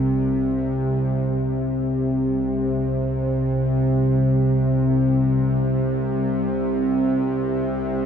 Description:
ambient; free time; A4 = 444 Hz
bowed-like drone; solo; 0.0-8.1 s; C2 to C3; -19 LUFS; equal; built-in reverb, ping-pong delay
wet cathedral reverb, RT60 6.2 s; -19 LUFS; side -7 dB against mid
0.0-1.3 A section; 1.3-8.1 B section

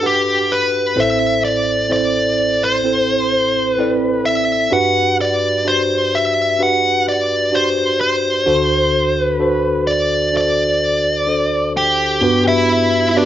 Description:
pop ballad; 64 BPM; 4/4; straight; G major; A4 = 440 Hz
smooth overdriven lead guitar; melody; 0.0-13.3 s; D4 to G5; -16 LUFS; equal
tine electric piano; accompaniment; 0.0-13.3 s; A1 to F#5; -18 LUFS; right 1 dB; slow stereo tremolo
moderate large studio reverb, RT60 1.1 s; band playing live in one room, nothing above 7.6 kHz; -14 LUFS; side -11 dB against mid
0.0-12.2 A section; 12.2-13.3 B section
0.0 Gmaj7; 1.0 Am; 4.7 Gmaj7; 8.5 D7; 12.2 Gmaj7

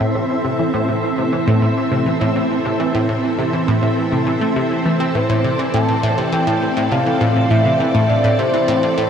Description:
ambient, sequencer-driven space music; 102 BPM; 4/4; straight; A minor; A4 = 440 Hz
string machine, full ensemble; sustained chords; 0.0-9.1 s; E3 to E5; -20 LUFS; equal; ensemble chorus
analog pluck; riff; 0.0-9.1 s; A2 to C4; -18 LUFS; equal; chorus, phaser, tape echo
twinkling granular texture; texture; 0.0-9.1 s; C4; -25 LUFS; right 1 dB; built-in reverb
pulse-width lead; melody; 5.2-9.1 s; C5 to A5; -19 LUFS; equal; chorus, tape echo
wet huge ambient reverb, RT60 7.2 s; -15 LUFS; side -8 dB against mid
0.0-9.1 A section
0.0 Am

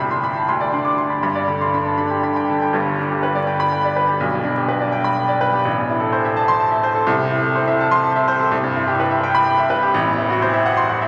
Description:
classical, virtuoso piano study; 83 BPM (dotted quarters); 6/8; rubato; G major; A4 = 440 Hz
bright baby grand piano; solo; 0.0-11.1 s; G1 to D6; -18 LUFS; equal
wet cathedral reverb, RT60 6.3 s; vinyl crackle; -18 LUFS; mono
0.0-2.7 A section; 2.7-11.1 A section
0.5 Csus2/D; 1.2 G; 4.2 G/B; 5.7 Am; 7.1 Am/C; 8.5 Cmaj7; 9.9 F#m7b5/A

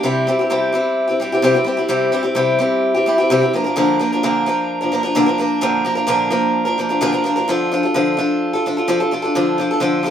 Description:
rock; 129 BPM; 4/4; straight; D minor; A4 = 440 Hz
picked acoustic archtop guitar; solo; 0.0-10.1 s; Bb2 to Bb4; -15 LUFS; equal
moderate studio reverb, RT60 0.6 s; band playing live in one room; -15 LUFS; side -9 dB against mid
0.0-7.5 A section; 7.5-10.1 B section
0.0 C; 3.5 Bb; 7.5 Dm

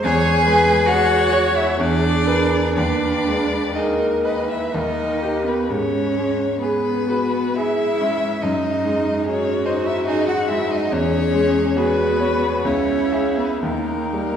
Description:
classical, slow romantic movement for piano quartet; 59-74 BPM; 3/4; rubato; G# minor; A4 = 441 Hz
warm violin; melody; 0.0-14.4 s; A#4 to G#5; -23 LUFS; left 4 dB
rich cello; second line; 0.0-14.4 s; A#3 to G#4; -23 LUFS; right 3 dB
bright grand piano; accompaniment; 0.0-14.4 s; C#2 to E5; -21 LUFS; equal
warm viola; accompaniment; 0.0-14.4 s; C#4 to C#5; -25 LUFS; equal
wet concert hall reverb, RT60 1.9 s; heard from further back in the room; -17 LUFS; side -8 dB against mid
0.0-14.4 A section
0.0 C#m/E; 1.8 E7; 2.8 G#m/D#; 4.7 D#; 5.7 G#m; 8.4 G#7/F#; 10.9 C#m/E; 12.6 C#m; 13.6 D#

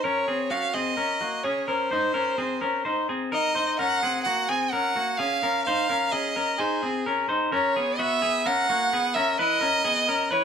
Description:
indie pop; 128 BPM; 4/4; straight; A4 = 438 Hz
warm violin; melody; 0.0-10.4 s; Ab4 to Ab5; -26 LUFS; right 3 dB
clean electric guitar; arpeggios; 0.0-10.4 s; Bb3 to C5; -25 LUFS; left 2 dB
light reverb; -22 LUFS; side -7 dB against mid
0.0-7.5 A section; 7.5-10.4 B section
0.0 Db5; 1.9 Cm7; 3.8 Gb; 5.4 Dbadd9; 7.5 E6

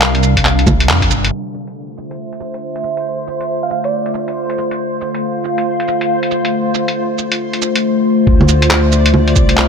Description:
future garage; 138 BPM; 4/4; swing 62% on 16ths; D minor; A4 = 440 Hz
warbly tape-like pad; sustained chords; 0.0-9.7 s; C3 to F5; -17 LUFS; left 1 dB; chorus, built-in reverb, sidechain pumping
dark detuned saw bass; bass; 0.0-1.3, 8.3-9.7 s; G1 to F2; -14 LUFS; equal; sidechain pumping
lo-fi sampler-style drum kit; drums; 0.0-9.7 s; bongos, cabasa, handclaps, hi-hat; -16 LUFS; right 1 dB
electronic kick drum; drums; 0.4-1.1, 8.3-9.5 s; -15 LUFS; equal
backwards swelling texture; texture; 2.1-9.7 s; C5 to D5; -25 LUFS; equal; built-in reverb
bell-like FM electric piano; melody; 3.6-4.1 s; D5 to F5; -22 LUFS; right 6 dB; chorus, tremolo, ping-pong delay
moderate lush hall reverb, RT60 2.3 s; low-pass filter; -12 LUFS; side -6 dB against mid
0.0-1.3 A section; 1.3-8.3 B section; 8.3-9.7 A section
band accent 0.9; filter sweep 1.3-8.3
0.0 C9sus4; 1.3 Dm9

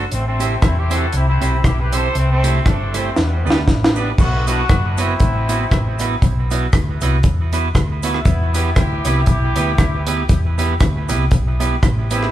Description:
ska; 118 BPM; 4/4; swing 56% on 8ths; E minor; A4 = 440 Hz
clean electric guitar; accompaniment; 0.0-12.3 s; A3 to C5; -23 LUFS; right 5 dB; tape echo
hollow-body short-scale fingered electric bass; bass; 0.0-12.3 s; F#1 to E2; -19 LUFS; equal
clear horn section; melody; 0.1-12.3 s; G3 to C5; -24 LUFS; left 1 dB; tape echo
deep reggae drum kit; drums; 0.1-12.3 s; crash cymbal, hi-hat, kick drum, rim click, snare drum; -17 LUFS; equal
cabasa; percussion; 0.1-12.2 s; -38 LUFS; left 6 dB
moderate large studio reverb, RT60 1.1 s; band playing live in one room; -14 LUFS; side -13 dB against mid
0.0-4.2 A section; 4.2-12.3 B section
drum fill 3.2-4.2
0.1 Am7; 2.1 C6; 3.2 Em7; 4.2 Bsus4; 8.3 Em

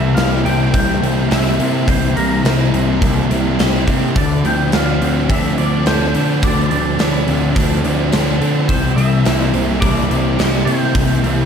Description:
rock, shoegaze and dream pop; 106 BPM; 4/4; straight; A4 = 440 Hz
clean electric guitar; melody; 0.0-11.5 s; Bb4 to G5; -24 LUFS; equal; ensemble chorus, analog delay
twelve-string electric guitar; arpeggios; 0.0-11.5 s; E3 to G4; -25 LUFS; right 8 dB; wide subtle chorus, analog delay
biting overdriven guitar; riff; 0.0-11.5 s; C3 to E4; -22 LUFS; right 10 dB; reverse reverb
thick fuzz guitar; riff; 0.0-11.5 s; C3 to A4; -19 LUFS; left 8 dB; distortion, wide subtle chorus
fuzz picked electric bass; bass; 0.0-11.5 s; C2 to D3; -18 LUFS; equal; overdrive
gated 80s drum kit; drums; 0.2-11.4 s; hi-hat, kick drum, snare drum; -20 LUFS; equal
moderate plate reverb, RT60 1.3 s; dreamy mix soaked in reverb; -13 LUFS; side -7 dB against mid
0.0-11.5 A section
0.0 C7; 4.2 Dm7; 8.7 C7

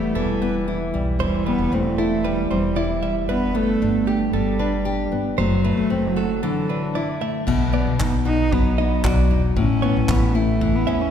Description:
acoustic pop; 115 BPM; 4/4; straight; A4 = 440 Hz
warm cello; melody; 0.0-11.1 s; E3 to D#4; -24 LUFS; right 1 dB
nylon-string guitar; accompaniment; 0.0-11.1 s; E2 to G4; -23 LUFS; left 4 dB
direct-recorded clean electric guitar; arpeggios; 0.0-11.1 s; G4 to E5; -30 LUFS; right 6 dB
upright bass; bass; 0.0-11.1 s; E1 to E2; -24 LUFS; equal
natural country drum kit; drums; 7.5-10.7 s; crash cymbal, handclaps, kick drum; -25 LUFS; equal
wet concert hall reverb, RT60 2.5 s; recorded in a church or concert hall; -18 LUFS; side -8 dB against mid
0.0-7.5 A section; 7.5-11.1 B section
break 6.4-7.5
0.0 Em; 1.2 C/E; 3.3 G; 5.4 F#dim; 6.4 Dsus2; 7.5 B; 9.6 Aadd9

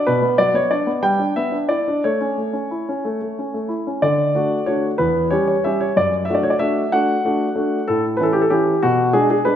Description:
classical-period piano sonatina; 62 BPM (dotted quarters); 6/8; straight; D major; A4 = 440 Hz
clear grand piano; solo; 0.0-9.6 s; E2 to G5; -16 LUFS; equal
wet recital hall reverb, RT60 1.7 s; -17 LUFS; side -9 dB against mid
0.0-4.0 A section; 4.0-9.6 B section
0.1 Bm; 1.0 Em7/G; 2.0 A; 4.0 D; 5.0 C#dim/E; 5.9 D/F#; 7.9 A; 8.8 G#dim/B

